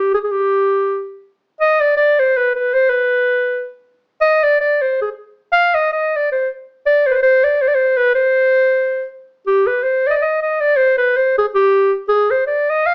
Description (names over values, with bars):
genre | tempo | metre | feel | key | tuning
balkan folk | free time | none | none | C harmonic minor | A4 = 440 Hz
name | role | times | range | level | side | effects
warm clarinet | solo | 0.0-12.9 s | G4 to F5 | -15 LUFS | equal | none
room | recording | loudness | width
moderate studio reverb, RT60 0.6 s | heard from further back in the room, small speaker sound | -16 LUFS | mono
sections
0.0-9.5 A section; 9.5-12.9 B section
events
none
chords
none